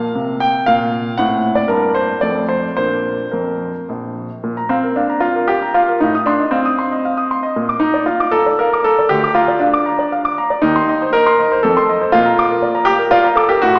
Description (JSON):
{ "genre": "classical-period piano sonatina", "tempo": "117 BPM", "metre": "3/4", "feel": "rubato", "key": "Bb major", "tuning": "A4 = 441 Hz", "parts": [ { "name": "warm concert grand piano", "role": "solo", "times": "0.0-13.8 s", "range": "Bb1 to Eb6", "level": "-13 LUFS", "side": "equal", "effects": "none" } ], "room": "wet church reverb, RT60 2.9 s", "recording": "recorded in a church or concert hall, small speaker sound", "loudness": "-13 LUFS", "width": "side -38 dB against mid", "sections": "0.0-4.4 A section; 4.4-13.8 B section", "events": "none", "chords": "0.0 Bb5; 1.2 Am6; 1.7 Gm; 2.2 F; 2.8 Bb; 4.4 Bb5; 6.0 F7(no3); 7.6 Bb; 9.1 Bb/D; 10.6 Cm/Eb; 11.6 F7; 12.1 Bb" }